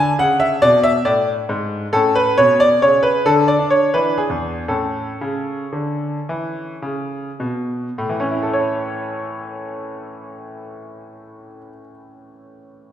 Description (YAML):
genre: classical, baroque-style suite movement for grand piano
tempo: 67-93 BPM (dotted quarters)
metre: 12/8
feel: rubato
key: A major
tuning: A4 = 439 Hz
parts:
  - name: bright concert grand piano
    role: solo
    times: 0.0-12.9 s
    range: E2 to G#5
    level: -16 LUFS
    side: equal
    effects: none
room: wet recital hall reverb, RT60 1.3 s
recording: recorded in a church or concert hall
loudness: -16 LUFS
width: side -10 dB against mid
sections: 0.0-8.0 A section; 8.0-11.3 B section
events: slowing down 2.8-8.0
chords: 0.0 E7; 1.9 A; 3.3 N.C.; 4.0 E7; 4.7 A